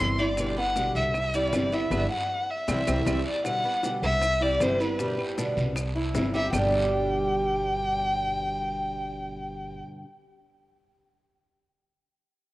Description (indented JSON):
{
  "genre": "latin, Cuban son and guajira",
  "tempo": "156 BPM",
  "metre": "4/4",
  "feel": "straight",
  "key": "G major",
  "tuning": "A4 = 439 Hz",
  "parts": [
    { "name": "warm violin", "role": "melody", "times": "0.0-9.8 s", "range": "B4 to C6", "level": "-28 LUFS", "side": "equal", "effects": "cassette tape" },
    { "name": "nylon-string guitar", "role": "accompaniment", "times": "0.0-10.0 s", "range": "G2 to G4", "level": "-32 LUFS", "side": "equal", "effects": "cassette tape" },
    { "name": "Cuban tres", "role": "arpeggios", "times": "0.0-9.8 s", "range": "G3 to G4", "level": "-32 LUFS", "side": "right 2 dB", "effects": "cassette tape" },
    { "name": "upright bass", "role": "bass", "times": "0.0-9.8 s", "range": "G1 to C2", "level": "-31 LUFS", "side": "equal", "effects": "none" },
    { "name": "maracas", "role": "percussion", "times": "0.0-6.6 s", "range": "none", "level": "-44 LUFS", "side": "left 3 dB", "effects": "none" },
    { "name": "bongos", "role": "percussion", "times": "0.2-6.6 s", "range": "none", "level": "-36 LUFS", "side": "left 3 dB", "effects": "none" },
    { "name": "guiro", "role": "percussion", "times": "0.2-6.6 s", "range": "none", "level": "-41 LUFS", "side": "right 2 dB", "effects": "none" },
    { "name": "claves", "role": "percussion", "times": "0.4-6.6 s", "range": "none", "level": "-40 LUFS", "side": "right 4 dB", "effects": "none" }
  ],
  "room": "moderate lush hall reverb, RT60 3.0 s",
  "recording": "home recording on cassette",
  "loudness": "-24 LUFS",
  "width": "side -17 dB against mid",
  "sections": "0.0-3.5 A section; 3.5-6.5 B section; 6.5-9.6 C section",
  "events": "band accent 1.9-3.5",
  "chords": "0.4 G; 1.1 C; 1.9 G; 2.7 C; 3.5 G; 4.2 C; 5.0 G; 5.8 C; 6.5 G",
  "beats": "| 0.38 0.76 1.15 1.53 | 1.92 2.30 2.69 3.07 | 3.45 3.84 4.22 4.61 | 4.99 5.38 5.76 6.15 | 6.53 6.92 7.30 7.68 | 8.07 8.45 8.84 9.22"
}